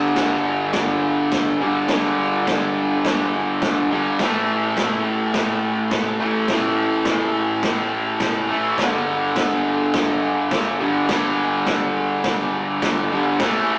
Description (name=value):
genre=garage rock duo or trio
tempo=104 BPM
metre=4/4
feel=straight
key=unclear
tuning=A4 = 438 Hz
part: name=fuzz guitar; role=riff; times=0.0-13.8 s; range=G2 to A3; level=-19 LUFS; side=equal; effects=distortion
part: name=vintage drum kit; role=drums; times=0.2-13.5 s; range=crash cymbal, kick drum, snare drum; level=-23 LUFS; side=equal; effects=none
room=moderate small room reverb, RT60 0.5 s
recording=rough rehearsal-room recording, cassette tape, small speaker sound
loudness=-17 LUFS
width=side -39 dB against mid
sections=0.0-13.8 A section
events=none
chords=0.0 G5; 4.2 A5; 8.8 G5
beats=0.19 0.77 1.34 | 1.91 2.48 3.06 3.63 | 4.20 4.78 5.35 5.93 | 6.50 7.08 7.65 8.23 | 8.80 9.38 9.96 10.54 | 11.11 11.69 12.27 12.85 | 13.42